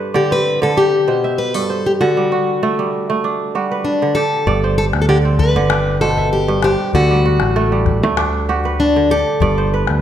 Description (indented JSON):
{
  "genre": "west african traditional, West African string and xylophone music",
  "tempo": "97 BPM",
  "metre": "4/4",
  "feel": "straight",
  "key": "G major",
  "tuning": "A4 = 438 Hz",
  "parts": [
    { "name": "kora", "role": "arpeggios", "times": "0.0-10.0 s", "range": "G2 to E5", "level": "-18 LUFS", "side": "right 4 dB", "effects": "none" },
    { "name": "fingerpicked plugged-in steel-string acoustic guitar", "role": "melody", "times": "0.2-9.7 s", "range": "D4 to B4", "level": "-17 LUFS", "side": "left 2 dB", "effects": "slapback echo" },
    { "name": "fingered electric bass", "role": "bass", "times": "4.5-10.0 s", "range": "G1 to D2", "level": "-18 LUFS", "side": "equal", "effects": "none" },
    { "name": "calabash", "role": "percussion", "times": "4.5-10.0 s", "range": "none", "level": "-22 LUFS", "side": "left 6 dB", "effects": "none" }
  ],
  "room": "moderate recital hall reverb, RT60 1.8 s",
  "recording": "none",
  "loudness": "-13 LUFS",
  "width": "side -10 dB against mid",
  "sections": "0.0-4.5 A section; 4.5-10.0 A section",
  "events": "none",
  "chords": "0.0 G; 2.0 D; 4.5 G; 6.9 D; 9.4 G",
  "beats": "0.13 0.75 1.37 | 1.99 2.61 3.23 3.85 | 4.47 5.09 5.71 6.33 | 6.95 7.56 8.18 8.80 | 9.41"
}